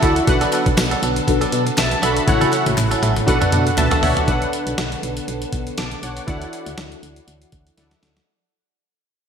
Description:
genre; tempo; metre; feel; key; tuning
1980s-style pop; 120 BPM; 4/4; swing 55% on 16ths; B minor; A4 = 440 Hz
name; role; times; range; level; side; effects
warm analog keys; accompaniment; 0.0-8.3 s; D4 to D6; -22 LUFS; left 1 dB; chorus
ensemble organ-string; sustained chords; 0.0-8.3 s; D3 to A4; -28 LUFS; equal; phaser, ensemble chorus
direct-recorded clean electric guitar; riff; 0.0-4.2 s; F#3 to A4; -24 LUFS; right 3 dB; wide subtle chorus, ping-pong delay
mellow synth brass; stabs; 0.0-4.2 s; D4 to A4; -26 LUFS; left 1 dB; none
solid FM bass; bass; 0.0-8.2 s; A1 to B2; -25 LUFS; equal; none
clean 12-bit digital drum machine; drums; 0.0-8.3 s; hi-hat, kick drum, snare drum, tambourine, toms; -21 LUFS; equal; gated reverb
group handclap; percussion; 0.5-3.9 s; none; -34 LUFS; left 4 dB; none
room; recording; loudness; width
wet lush hall reverb, RT60 2.0 s, digital ambience; bright 1980s-style digital production; -16 LUFS; side -7 dB against mid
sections
0.0-4.3 A section; 4.3-8.3 B section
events
synth keys fill 0.0, 3.5-4.3; drum fill 2.3-4.3, 7.8-8.3; fade-out 4.3-8.3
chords
0.3 Bm7; 2.3 F#m7/A; 3.3 Bm7; 6.3 Dadd9

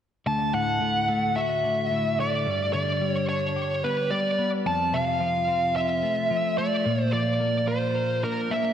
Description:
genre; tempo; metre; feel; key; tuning
rock; 109 BPM; 4/4; straight; unclear; A4 = 436 Hz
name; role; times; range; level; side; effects
high-gain lead guitar; melody; 0.3-8.7 s; Bb4 to A5; -25 LUFS; equal; distortion, slapback echo
twelve-string electric guitar; arpeggios; 0.3-8.7 s; D2 to Bb4; -27 LUFS; left 1 dB; wide subtle chorus
room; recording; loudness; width
wet lush hall reverb, RT60 2.4 s; big arena sound; -23 LUFS; side -9 dB against mid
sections
0.3-8.7 A section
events
none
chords
0.3 D; 2.5 G; 4.7 F; 6.9 Bb

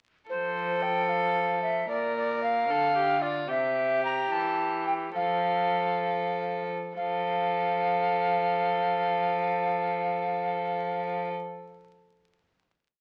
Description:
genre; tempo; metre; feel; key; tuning
classical, renaissance-style consort dance; 63-76 BPM (dotted quarters); 6/8; straight; F major; A4 = 440 Hz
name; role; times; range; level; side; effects
alto recorder; melody; 0.3-11.3 s; C5 to Bb5; -31 LUFS; equal; none
warm violin; second line; 0.3-11.3 s; F4 to Bb4; -32 LUFS; equal; none
rich cello; bass; 0.3-11.3 s; Bb2 to F3; -36 LUFS; equal; none
room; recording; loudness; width
moderate stone room reverb, RT60 1.1 s; very old 78 rpm record, vinyl crackle; -28 LUFS; mono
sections
0.3-7.0 A section; 7.0-10.8 final chord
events
slowing down 2.7-7.0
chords
0.3 F; 1.9 Bb; 3.5 C; 5.2 F

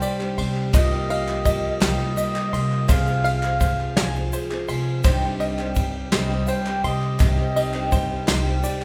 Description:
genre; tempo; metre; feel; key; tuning
indie folk with a building arrangement; 56 BPM (dotted quarters); 6/8; straight; C minor; A4 = 440 Hz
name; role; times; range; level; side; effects
mellow flugelhorn; melody; 0.0-8.6 s; C5 to G5; -31 LUFS; equal; none
fingerpicked steel-string acoustic guitar; accompaniment; 0.0-8.8 s; C3 to Ab4; -31 LUFS; equal; none
picked twelve-string acoustic guitar; accompaniment; 0.0-8.8 s; C3 to Ab4; -33 LUFS; equal; none
bluegrass banjo; arpeggios; 0.0-8.8 s; C5 to C6; -32 LUFS; equal; none
soft brush drum kit; drums; 0.0-8.8 s; kick drum, ride cymbal, snare drum; -26 LUFS; equal; none
egg shaker; percussion; 0.0-8.8 s; none; -42 LUFS; equal; none
group handclap; percussion; 0.2-8.8 s; none; -40 LUFS; equal; none
upright bass; bass; 0.4-8.6 s; C2 to C3; -28 LUFS; equal; none
room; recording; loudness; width
moderate recital hall reverb, RT60 1.6 s; recorded in a church or concert hall; -22 LUFS; mono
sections
0.0-8.8 A section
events
none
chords
0.0 Cmadd9; 0.7 Ebadd9/C; 2.9 Fm/C; 5.0 Cmadd9

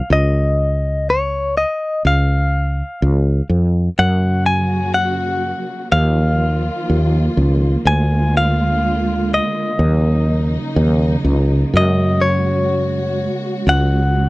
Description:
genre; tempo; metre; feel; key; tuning
acoustic folk-pop ballad; 62 BPM; 4/4; straight; F# major; A4 = 441 Hz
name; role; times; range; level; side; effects
direct-recorded clean electric guitar; melody; 0.0-14.3 s; C#5 to G#5; -20 LUFS; left 2 dB; tremolo
woody fretless electric bass; bass; 0.1-14.3 s; C#2 to F#2; -16 LUFS; equal; none
warm symphonic string section; sustained chords; 4.0-14.3 s; C#3 to F#4; -22 LUFS; right 2 dB; none
room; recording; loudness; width
little or no reverb; dry, close 1970s-style studio recording; -14 LUFS; side -20 dB against mid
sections
0.0-14.3 A section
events
none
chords
0.1 C#sus2; 2.0 C#; 4.0 F#; 5.9 D#sus2; 7.9 A#7/D; 9.8 D#m7; 11.7 F#add9; 13.7 C#sus4

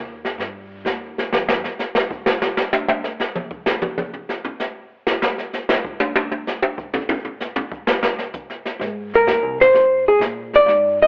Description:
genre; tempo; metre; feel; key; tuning
jazz, small-group swing and bop; 128 BPM; 4/4; swing 69% on 8ths; unclear; A4 = 439 Hz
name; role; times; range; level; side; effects
upright bass; bass; 0.0-1.6, 8.8-11.1 s; Ab1 to Bb2; -35 LUFS; equal; none
jazz brush drum kit; drums; 0.2-11.1 s; brushed snare drum, hi-hat, kick drum, snare drum, toms; -23 LUFS; equal; cassette tape
archtop guitar, miked and amplified; melody; 9.2-11.1 s; Ab4 to Eb5; -15 LUFS; equal; cassette tape
room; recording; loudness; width
moderate spring reverb, RT60 1.2 s; home recording on cassette, telephone sound; -20 LUFS; mono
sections
0.0-11.1 A section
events
hollow-body jazz guitar solo 0.0-11.1; drum solo 1.3-8.8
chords
0.0 Cm (rootless); 1.3 N.C.; 8.8 Abmaj7(no3)

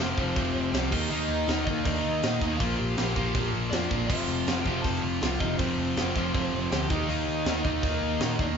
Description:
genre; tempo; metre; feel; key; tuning
punk rock; 160 BPM; 4/4; straight; unclear; A4 = 440 Hz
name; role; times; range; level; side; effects
smooth overdriven lead guitar; melody; 0.0-8.5 s; C4 to A5; -34 LUFS; left 2 dB; none
overdriven electric guitar; riff; 0.0-8.6 s; F2 to Eb4; -30 LUFS; equal; none
thick fuzz guitar; riff; 0.0-8.4 s; F2 to Eb4; -33 LUFS; equal; distortion
overdriven picked electric bass; bass; 0.0-8.5 s; F1 to Bb2; -32 LUFS; equal; none
tight metal drum kit; drums; 0.0-8.5 s; crash cymbal, hi-hat, kick drum, snare drum; -31 LUFS; right 1 dB; none
room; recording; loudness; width
light reverb; band playing live in one room, nothing above 7.6 kHz; -25 LUFS; side -6 dB against mid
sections
0.0-8.6 A section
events
none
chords
0.0 F5; 0.9 Eb; 2.6 Bb; 4.1 F5; 6.9 Eb

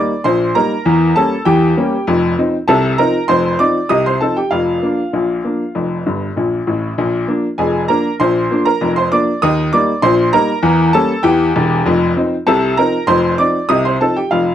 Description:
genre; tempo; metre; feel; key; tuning
ragtime piano; 98 BPM; 2/4; straight; Bb major; A4 = 440 Hz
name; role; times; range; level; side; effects
bright upright piano; solo; 0.0-14.5 s; E1 to Eb6; -12 LUFS; equal; none
room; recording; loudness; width
light reverb; dry, close 1970s-style studio recording; -12 LUFS; side -10 dB against mid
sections
0.0-7.0 A section; 7.0-14.5 A section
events
upright piano fill 6.1-7.0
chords
0.0 Eb; 0.9 Edim7; 2.1 F7; 4.5 Bb/F; 5.7 F; 7.0 Bb7; 9.4 Eb; 10.6 Edim7; 11.9 F7

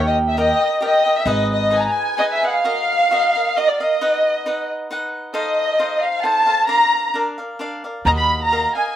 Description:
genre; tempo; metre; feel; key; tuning
mexican folk, mariachi; 133 BPM; 3/4; rubato; Eb harmonic minor; A4 = 440 Hz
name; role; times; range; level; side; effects
dark studio violin section; melody; 0.0-9.0 s; D5 to Cb6; -16 LUFS; equal; slapback echo
cavaquinho; accompaniment; 0.0-9.0 s; D4 to G5; -24 LUFS; equal; slapback echo
upright bass; bass; 0.0-1.9, 8.1-8.6 s; G#1 to D#2; -22 LUFS; equal; none
room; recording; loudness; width
light reverb; recorded outdoors, with no room sound; -16 LUFS; side -11 dB against mid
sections
0.0-2.6 A section; 2.6-9.0 B section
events
none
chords
0.0 D#; 1.3 G#m; 2.6 Ebmadd9; 4.0 B/D#; 5.3 F7; 6.7 Bb; 8.1 Ebmadd9

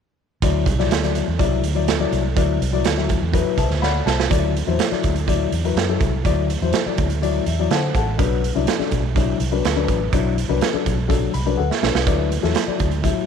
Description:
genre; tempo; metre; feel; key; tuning
uptempo 1960s-style soul; 124 BPM; 4/4; straight; D mixolydian; A4 = 437 Hz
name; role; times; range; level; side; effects
dark upright piano; accompaniment; 0.4-13.3 s; F#3 to B5; -22 LUFS; left 12 dB; none
vintage muted fingered electric bass; bass; 0.4-13.1 s; A1 to D3; -22 LUFS; right 1 dB; none
raw garage drum kit; drums; 0.4-13.2 s; hi-hat, kick drum, snare drum; -22 LUFS; right 5 dB; none
room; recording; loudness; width
light reverb, studio reverb; 1960s-style stereo; -17 LUFS; side -7 dB against mid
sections
0.4-4.3 A section; 4.3-13.3 B section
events
upright piano fill 3.3-4.3, 7.2-8.2, 11.1-12.1; drum fill 3.8-4.3, 11.6-12.1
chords
0.4 Dadd9

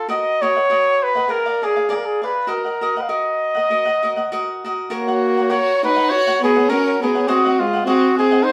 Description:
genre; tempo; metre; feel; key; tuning
mexican folk, mariachi; 100 BPM; 4/4; swing 55% on 8ths; Eb minor, F# major from 4.9 s; A4 = 442 Hz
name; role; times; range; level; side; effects
warm trumpet; melody; 0.0-8.5 s; E#4 to F5; -20 LUFS; equal; none
cavaquinho; accompaniment; 0.0-8.5 s; Gb4 to Gb5; -26 LUFS; equal; none
clear violin; second line; 4.9-8.5 s; G#3 to F#4; -22 LUFS; equal; none
room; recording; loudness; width
wet studio reverb, RT60 0.6 s; heard from further back in the room; -18 LUFS; mono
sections
0.0-4.9 A section; 4.9-8.5 B section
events
none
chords
0.1 Ebm; 1.3 Bb7; 2.5 Ebm; 4.9 F#; 7.3 G#7

